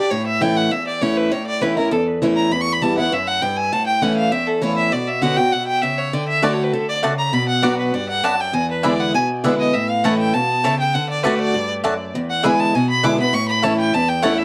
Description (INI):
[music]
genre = bluegrass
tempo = 199 BPM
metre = 4/4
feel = straight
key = unclear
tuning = A4 = 442 Hz
[part]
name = clear fiddle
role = melody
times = 0.0-14.4 s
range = A4 to D6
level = -22 LUFS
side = equal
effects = tape echo
[part]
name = picked acoustic archtop guitar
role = accompaniment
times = 0.0-14.4 s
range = E2 to G4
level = -22 LUFS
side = equal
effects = none
[part]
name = mandolin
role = stabs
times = 6.4-14.3 s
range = A3 to B5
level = -24 LUFS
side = equal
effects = none
[sound]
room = moderate studio reverb, RT60 0.6 s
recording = cassette tape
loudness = -19 LUFS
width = mono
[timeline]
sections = 0.0-14.4 A section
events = fiddle solo 0.0-14.4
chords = 0.1 A; 2.5 Em; 3.7 A; 4.9 Bmadd9; 6.1 D; 7.3 Bm; 8.5 E7; 9.7 A; 10.9 D; 12.1 E7; 13.3 A